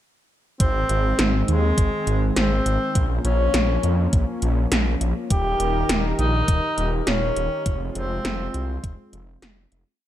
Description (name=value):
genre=synthwave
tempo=102 BPM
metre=4/4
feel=straight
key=F minor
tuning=A4 = 442 Hz
part: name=warm tenor saxophone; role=melody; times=0.6-8.7 s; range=Ab3 to G4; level=-26 LUFS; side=left 1 dB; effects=ping-pong delay
part: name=brassy analog pad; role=sustained chords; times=0.6-10.0 s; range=Eb3 to Bb4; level=-29 LUFS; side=equal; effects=chorus, sidechain pumping
part: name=wide detuned saw bass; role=bass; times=0.6-9.8 s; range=Eb1 to F2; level=-23 LUFS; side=equal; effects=chorus
part: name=80s electronic pad drums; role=drums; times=0.6-9.8 s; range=hi-hat, snare drum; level=-25 LUFS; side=equal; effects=none
part: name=electronic kick drum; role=drums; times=0.6-9.0 s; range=none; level=-21 LUFS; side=equal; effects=none
room=light reverb, digital ambience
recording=dark, warm production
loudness=-19 LUFS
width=side -12 dB against mid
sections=0.6-10.0 verse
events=fade-out 6.9-10.0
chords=0.6 Ab; 3.0 Bbm; 5.3 Eb; 7.7 Fm